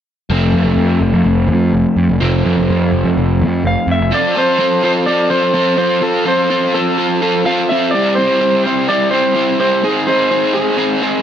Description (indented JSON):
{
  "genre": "rock",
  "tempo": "126 BPM",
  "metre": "4/4",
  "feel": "straight",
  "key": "F major",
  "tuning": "A4 = 444 Hz",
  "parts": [
    { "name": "crunchy overdriven guitar", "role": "riff", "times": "0.3-11.2 s", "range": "F3 to A4", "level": "-15 LUFS", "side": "equal", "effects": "harmonic tremolo" },
    { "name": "fuzz picked electric bass", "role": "bass", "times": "0.3-4.1 s", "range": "F1 to F2", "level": "-14 LUFS", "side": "equal", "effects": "overdrive" },
    { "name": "electric guitar through a small old amp", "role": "melody", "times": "3.7-11.2 s", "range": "Ab4 to F5", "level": "-15 LUFS", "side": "equal", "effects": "slapback echo" }
  ],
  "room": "moderate spring reverb, RT60 1.3 s",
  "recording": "none",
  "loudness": "-12 LUFS",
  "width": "side -9 dB against mid",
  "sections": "0.3-4.1 A section; 4.1-11.2 B section",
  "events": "none",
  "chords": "0.3 F; 7.9 C; 9.8 Ab",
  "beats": "| 0.30 0.78 1.26 1.74 | 2.21 2.69 3.17 3.65 | 4.12 4.60 5.08 5.55 | 6.03 6.51 6.98 7.46 | 7.93 8.41 8.89 9.36 | 9.84 10.31 10.79"
}